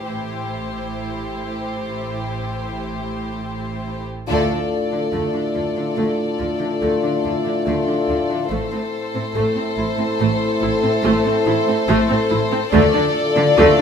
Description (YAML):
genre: cinematic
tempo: 71 BPM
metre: 5/4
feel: straight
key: A minor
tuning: A4 = 440 Hz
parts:
  - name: dark studio violin section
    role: melody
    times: 0.1-13.8 s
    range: C5 to D5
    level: -25 LUFS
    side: left 5 dB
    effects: none
  - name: warm symphonic violin section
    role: second line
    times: 0.1-13.8 s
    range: G4 to A4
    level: -26 LUFS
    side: left 4 dB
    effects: none
  - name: dark symphonic viola section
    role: accompaniment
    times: 0.1-13.8 s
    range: A3 to F4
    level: -23 LUFS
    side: right 1 dB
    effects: none
  - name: dark symphonic double bass section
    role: bass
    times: 0.1-13.7 s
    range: A1 to D2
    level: -27 LUFS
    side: right 4 dB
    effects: none
  - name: warm studio cello section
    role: bass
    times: 0.1-13.8 s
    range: A2 to D3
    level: -27 LUFS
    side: right 3 dB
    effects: none
  - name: warm French horn section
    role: sustained chords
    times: 4.3-13.8 s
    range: C4 to F4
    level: -24 LUFS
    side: left 5 dB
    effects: none
  - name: warm trombone section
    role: sustained chords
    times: 4.3-13.8 s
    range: A2 to A3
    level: -25 LUFS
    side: right 3 dB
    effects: none
room: wet recital hall reverb, RT60 1.2 s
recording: minimal, uncompressed stereo recording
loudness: -18 LUFS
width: side -7 dB against mid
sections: 0.0-4.3 A section; 4.3-13.8 B section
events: band accent 4.3-5.1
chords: 0.1 Am7; 4.3 Dm; 8.5 Am; 12.7 Dm